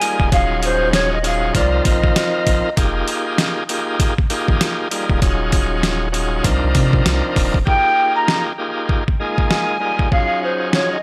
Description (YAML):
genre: hip hop, boom-bap hip-hop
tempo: 98 BPM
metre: 4/4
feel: swing 60% on 16ths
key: F minor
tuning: A4 = 440 Hz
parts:
  - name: breathy mellow jazz flute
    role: melody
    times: 0.0-2.7, 7.7-11.0 s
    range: C5 to Bb5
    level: -22 LUFS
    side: equal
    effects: high-pass filter, low-pass filter
  - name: bright tonewheel organ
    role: accompaniment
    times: 0.0-11.0 s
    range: F3 to Bb4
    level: -23 LUFS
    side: equal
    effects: overdrive, fast rotary speaker, cassette tape, high-pass filter, low-pass filter
  - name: boom bap sampler-style drum kit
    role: drums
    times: 0.0-10.9 s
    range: hi-hat, kick drum, snare drum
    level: -20 LUFS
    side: equal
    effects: none
  - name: sleigh bells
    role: percussion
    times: 0.0-7.5 s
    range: none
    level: -34 LUFS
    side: equal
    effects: none
  - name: soft dub sub bass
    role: bass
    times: 0.2-7.6 s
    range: D1 to C3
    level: -24 LUFS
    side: equal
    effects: none
room: little or no reverb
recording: dry, gritty hardware recording, transformer saturation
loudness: -18 LUFS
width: mono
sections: 0.0-7.7 A section; 7.7-11.0 B section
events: hi-hats muted 7.7-11.0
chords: 0.3 Ebm11; 1.5 Cm7; 2.8 Fm11; 5.2 Ebm11; 6.4 Cm11; 7.7 Fm11; 10.1 Ebm11